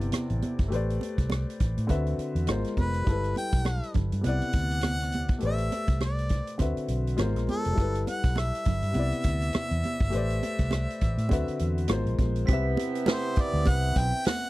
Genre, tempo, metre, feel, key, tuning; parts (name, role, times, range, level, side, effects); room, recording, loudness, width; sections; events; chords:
lush 1970s-style soul; 102 BPM; 4/4; swing 58% on 16ths; A4 = 440 Hz
warm baby grand piano; accompaniment; 0.0-14.5 s; C3 to E5; -32 LUFS; left 3 dB
vintage muted fingered electric bass; bass; 0.0-14.1 s; F1 to A2; -28 LUFS; equal
vintage drum kit; drums; 0.0-14.4 s; hi-hat, kick drum, rim click, snare drum; -27 LUFS; equal
congas; percussion; 0.1-14.4 s; -34 LUFS; right 4 dB
bright harmonica; melody; 2.8-14.5 s; A4 to G5; -32 LUFS; equal
mellow horn section; stabs; 12.5-14.2 s; C3 to E4; -32 LUFS; right 3 dB
glockenspiel with soft plastic mallets; texture; 12.5-14.2 s; B6; -41 LUFS; right 16 dB; stereo widening
little or no reverb; dry, close 1970s-style studio recording; -25 LUFS; side -18 dB against mid
0.0-12.5 A section; 12.5-14.5 B section
0.0 Cmaj9; 0.7 Am11; 1.9 D13; 2.5 Ab69; 3.1 G69; 4.2 Cmaj9; 5.4 Am11; 6.6 D13; 7.2 Ab69; 7.8 G69; 9.0 Cmaj9; 10.1 Am11; 11.3 D13; 11.9 Ab69; 12.5 Cmaj7